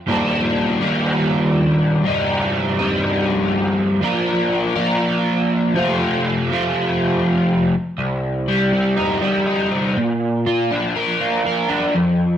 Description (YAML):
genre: rock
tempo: 121 BPM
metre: 4/4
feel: straight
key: C dorian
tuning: A4 = 439 Hz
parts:
  - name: crunchy overdriven guitar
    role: solo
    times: 0.1-12.4 s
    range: C2 to Bb4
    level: -16 LUFS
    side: equal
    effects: rotary speaker
room: wet stone room reverb, RT60 0.9 s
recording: rough rehearsal-room recording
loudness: -16 LUFS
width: side -10 dB against mid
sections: 0.0-8.0 A section; 8.0-12.4 B section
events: none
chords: 0.1 Ebmaj7; 2.1 Cm; 4.0 Bb; 5.8 F; 8.0 Cm; 10.0 Bb